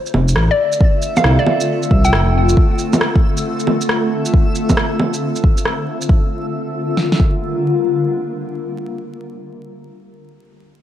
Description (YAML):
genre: future garage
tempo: 136 BPM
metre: 4/4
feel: swing 65% on 16ths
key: G dorian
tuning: A4 = 440 Hz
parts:
  - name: granular cloud pad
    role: sustained chords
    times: 0.5-9.5 s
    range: D3 to Bb4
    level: -20 LUFS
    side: left 2 dB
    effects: built-in reverb, sidechain pumping
  - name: backwards swelling texture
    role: texture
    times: 0.5-6.1 s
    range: E5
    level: -27 LUFS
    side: right 4 dB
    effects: built-in reverb
  - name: dark detuned saw bass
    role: bass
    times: 0.1-2.6 s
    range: F1 to C2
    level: -14 LUFS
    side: equal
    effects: sidechain pumping
  - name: electronic shaker, bongos and rim click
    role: drums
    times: 0.1-6.1 s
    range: none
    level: -19 LUFS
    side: right 1 dB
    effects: none
  - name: hollow square pluck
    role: melody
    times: 0.5-2.3 s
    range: D5 to G5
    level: -20 LUFS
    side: left 2 dB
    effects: chorus, vintage 12-bit sampler grit, analog delay
  - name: deep house drum kit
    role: drums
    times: 0.8-7.3 s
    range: kick drum, snare drum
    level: -14 LUFS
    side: equal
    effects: none
room: moderate lush hall reverb, RT60 2.0 s, digital ambience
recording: vinyl crackle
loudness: -14 LUFS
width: side -11 dB against mid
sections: 0.0-6.1 A section; 6.1-9.6 B section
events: none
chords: 0.0 F6; 6.1 Gm7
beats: 0.36 | 0.80 1.24 1.68 2.12 | 2.56 3.01 3.45 3.89 | 4.33 4.77 5.21 5.65 | 6.09 6.54 6.98 7.42 | 7.86 8.30 8.74 9.18